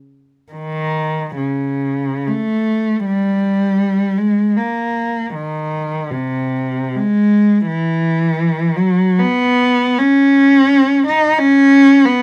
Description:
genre	classical, free, expressive piece for unaccompanied cello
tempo	48-89 BPM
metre	3/4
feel	rubato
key	unclear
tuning	A4 = 440 Hz
part	warm cello	solo	0.5-12.2 s	B#2 to D#4	-15 LUFS	equal	none
room	light reverb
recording	none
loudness	-15 LUFS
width	mono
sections	0.6-12.2 A section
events	none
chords	none

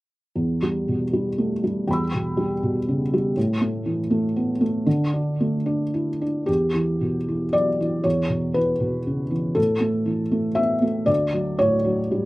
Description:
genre	neoclassical minimalist piano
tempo	118 BPM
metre	3/4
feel	rubato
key	E dorian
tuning	A4 = 443 Hz
part	felt-muted upright piano	solo	0.4-12.3 s	D2 to E6	-20 LUFS	equal	none
room	light reverb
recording	recorded outdoors, with no room sound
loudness	-20 LUFS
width	side -19 dB against mid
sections	0.4-6.5 A section; 6.5-12.3 B section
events	none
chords	0.4 Em; 3.4 A5; 4.9 D5; 6.5 Em; 9.6 A5; 11.1 D

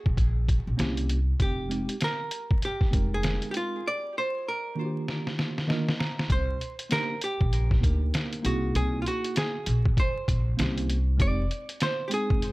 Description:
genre	hip hop, jazz-hop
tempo	98 BPM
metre	4/4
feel	swing 61% on 16ths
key	C minor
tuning	A4 = 440 Hz
part	archtop guitar, miked and amplified	melody	0.0-12.5 s	F4 to D5	-32 LUFS	right 1 dB	plate reverb, tape echo
part	upright bass	bass	0.1-12.5 s	F1 to D2	-26 LUFS	equal	none
part	trip hop sampler-style drum kit	drums	0.1-12.5 s	hi-hat, kick drum, snare drum	-27 LUFS	equal	none
part	mellow tine electric piano	accompaniment	0.8-12.5 s	Eb3 to Bb5	-32 LUFS	right 1 dB	medium stereo tremolo, plate reverb
room	little or no reverb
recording	vinyl crackle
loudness	-24 LUFS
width	side -20 dB against mid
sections	0.0-6.3 A section; 6.3-12.5 B section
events	break 3.8-6.3; drum fill 5.1-6.3; tine electric piano fill 5.4-6.3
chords	0.0 C7(#5, no3) (rootless); 0.8 C7b9; 1.4 Fm9; 3.8 Ebmaj9; 6.3 Cm9; 8.4 C7alt; 10.6 C7b9; 11.2 Fm9

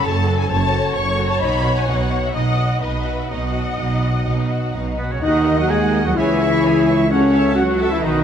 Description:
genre	cinematic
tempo	128 BPM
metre	4/4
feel	straight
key	unclear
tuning	A4 = 440 Hz
part	warm symphonic violin section	melody	0.0-8.2 s	F#4 to C#6	-27 LUFS	left 6 dB	none
part	rich symphonic violin section	second line	0.0-8.2 s	D#4 to C#6	-28 LUFS	left 2 dB	none
part	rich symphonic viola section	accompaniment	0.0-8.2 s	F#4 to F#5	-25 LUFS	equal	none
part	dark French horn section	sustained chords	0.0-8.2 s	F#3 to G#4	-22 LUFS	left 2 dB	none
part	rich symphonic cello section	bass	0.0-8.2 s	F#2 to G#3	-23 LUFS	right 2 dB	none
part	rich symphonic double bass section	bass	0.0-8.2 s	F#1 to D#2	-24 LUFS	right 2 dB	none
part	clear oboe	second line	5.0-8.2 s	B4 to G#5	-27 LUFS	right 1 dB	none
part	flute section	second line	5.0-8.2 s	B4 to G#5	-27 LUFS	left 1 dB	none
part	mellow trumpet	stabs	5.0-8.2 s	B3 to G#4	-25 LUFS	right 2 dB	none
part	mellow tuba	bass	5.2-8.2 s	B1 to D#2	-23 LUFS	right 2 dB	none
room	wet scoring stage reverb, RT60 1.6 s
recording	none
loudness	-16 LUFS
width	side -8 dB against mid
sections	0.0-5.2 A section; 5.2-8.2 B section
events	none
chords	0.0 F#m; 1.4 B; 5.2 D#m; 6.2 C#m; 7.1 F#m7/C#

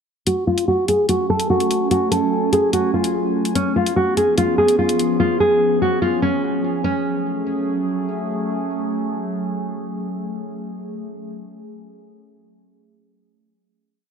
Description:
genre	hip hop, drill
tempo	146 BPM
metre	4/4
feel	half-time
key	F# harmonic minor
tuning	A4 = 440 Hz
part	nylon-string guitar	melody	0.3-8.0 s	C#4 to A4	-18 LUFS	equal	low-pass filter, ping-pong delay
part	warbly tape-like pad	sustained chords	0.9-10.9 s	E#3 to G#5	-23 LUFS	right 2 dB	chorus, built-in reverb, phaser, low-pass filter
part	electronic hi-hat	drums	0.3-5.1 s	none	-26 LUFS	left 2 dB	none
room	moderate lush hall reverb, RT60 2.4 s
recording	dark, warm production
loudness	-17 LUFS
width	side -6 dB against mid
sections	0.3-6.8 breakdown; 6.8-10.1 final chord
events	filter sweep 0.3-6.8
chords	0.3 F#madd9; 3.6 C#7; 6.8 F#madd9

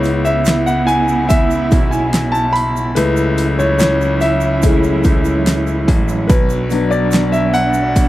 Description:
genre	pop ballad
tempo	72 BPM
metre	4/4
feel	straight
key	F# minor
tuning	A4 = 440 Hz
part	warm concert grand piano	accompaniment	0.0-8.1 s	F#3 to B5	-17 LUFS	left 2 dB	none
part	muted studio string section	sustained chords	0.0-8.1 s	C#3 to E4	-20 LUFS	right 4 dB	none
part	clear concert grand piano	bass	0.0-8.1 s	A1 to C#2	-18 LUFS	left 1 dB	none
part	tube shaker	percussion	0.0-8.1 s	none	-35 LUFS	right 16 dB	none
part	pop drum kit	drums	0.1-8.1 s	hi-hat, kick drum, snare drum	-14 LUFS	equal	none
room	little or no reverb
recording	dry, close 1970s-style studio recording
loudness	-12 LUFS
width	side -15 dB against mid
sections	0.0-8.1 A section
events	grand piano solo 0.0-8.1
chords	0.0 C#m7; 3.0 F#m7/C#; 6.3 Bm

